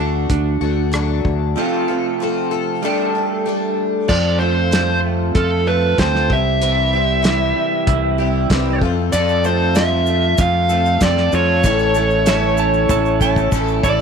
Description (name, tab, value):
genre	folk rock and heartland rock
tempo	95 BPM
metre	4/4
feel	straight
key	unclear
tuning	A4 = 440 Hz
part	electric slide guitar	second line	0.0-0.9, 12.3-14.0 s	D4 to A5	-24 LUFS	right 12 dB	none
part	picked twelve-string acoustic guitar	accompaniment	0.0-14.0 s	A2 to A4	-22 LUFS	left 13 dB	lush chorus
part	electric guitar through a small old amp	riff	0.0-14.0 s	F2 to G4	-22 LUFS	right 15 dB	wide subtle chorus
part	modern bright fingered electric bass	bass	0.0-14.0 s	A1 to F2	-19 LUFS	equal	none
part	cloth-damped thuddy drum kit	drums	0.3-14.0 s	crash cymbal, hi-hat, kick drum, rim click, snare drum	-20 LUFS	equal	none
part	dark smooth lead guitar	melody	4.1-14.0 s	A4 to F5	-18 LUFS	equal	overdrive
part	tube shaker	percussion	9.1-14.0 s	none	-36 LUFS	left 19 dB	none
room	light reverb, small room reverb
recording	1960s-style stereo with parts hard left and right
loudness	-14 LUFS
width	side -6 dB against mid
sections	0.0-4.1 A section; 4.1-14.0 B section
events	drum fill 12.9-14.0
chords	0.0 D; 1.6 F; 2.8 Gsus2; 4.1 F; 6.3 C; 8.8 F; 11.6 A